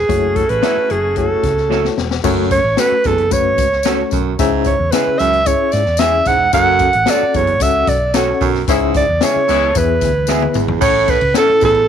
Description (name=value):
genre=uptempo 1960s-style soul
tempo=112 BPM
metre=4/4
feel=straight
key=unclear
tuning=A4 = 439 Hz
part: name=mellow alto saxophone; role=melody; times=0.0-11.9 s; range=G#4 to F#5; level=-15 LUFS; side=right 2 dB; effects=none
part: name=hollow-body short-scale fingered electric bass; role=bass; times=0.0-11.9 s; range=E1 to G#2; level=-22 LUFS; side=equal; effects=tube saturation
part: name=clear horn section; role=second line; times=0.1-1.9, 8.7-9.8 s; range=G#3 to F#4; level=-26 LUFS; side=left 12 dB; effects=none
part: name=reed electric piano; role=accompaniment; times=0.1-11.7 s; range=A2 to F#5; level=-20 LUFS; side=left 14 dB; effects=fast tremolo
part: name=swinging big-band drum kit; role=drums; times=0.1-11.9 s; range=crash cymbal, hi-hat, kick drum, ride cymbal, snare drum, toms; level=-21 LUFS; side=left 4 dB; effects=none
part: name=electric guitar through a small old amp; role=stabs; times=0.6-11.5 s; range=F#3 to A4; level=-24 LUFS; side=right 13 dB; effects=none
part: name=warm baritone saxophone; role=riff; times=2.2-11.8 s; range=E2 to A2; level=-21 LUFS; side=right 12 dB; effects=none
part: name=tambourine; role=percussion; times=2.2-11.7 s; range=none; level=-29 LUFS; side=left 17 dB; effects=none
room=light reverb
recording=1960s-style stereo with parts hard left and right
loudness=-12 LUFS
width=side -8 dB against mid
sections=0.0-2.2 A section; 2.2-10.8 B section; 10.8-11.9 C section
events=drum fill 1.7-2.2, 10.3-10.8; band accent 8.7-10.8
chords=0.1 F#m7; 2.2 F#m; 4.4 C#m; 6.5 F#m; 8.7 C#m; 9.8 E; 10.8 A